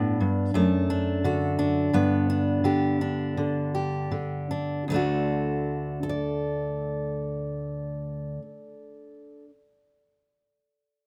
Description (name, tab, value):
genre	folk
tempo	78-88 BPM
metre	4/4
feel	straight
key	D major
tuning	A4 = 438 Hz
part	fingerpicked steel-string acoustic guitar	accompaniment	0.0-9.5 s	D2 to D5	-27 LUFS	equal	none
room	light reverb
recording	close, detailed microphones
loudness	-27 LUFS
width	mono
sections	0.0-4.9 A section; 4.9-8.0 B section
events	slowing down 0.0-4.9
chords	0.0 G; 0.5 D/F#; 1.9 G; 4.9 D